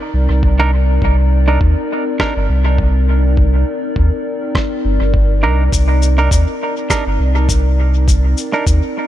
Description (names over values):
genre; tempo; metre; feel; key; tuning
ambient dub; 102 BPM; 4/4; swing 55% on 16ths; C minor; A4 = 440 Hz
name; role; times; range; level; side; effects
warbly tape-like pad; sustained chords; 0.0-9.1 s; C4 to D5; -21 LUFS; left 1 dB; chorus, built-in reverb
warm sub bass; bass; 0.1-8.8 s; G1 to Eb2; -12 LUFS; equal; none
electronic kick drum; drums; 0.4-8.8 s; none; -16 LUFS; equal; small room ambience
semi-hollow electric guitar; stabs; 0.6-8.6 s; D4 to Bb4; -22 LUFS; right 3 dB; dub echo
electronic rim click and cabasa; drums; 2.2-8.8 s; none; -25 LUFS; left 2 dB; small room ambience, dub echo
room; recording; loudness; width
little or no reverb; none; -12 LUFS; side -13 dB against mid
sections
0.0-9.1 A section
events
none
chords
0.0 Cm9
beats
0.43 | 1.02 1.61 2.20 2.79 | 3.37 3.96 4.55 5.14 | 5.73 6.32 6.90 7.49 | 8.08 8.67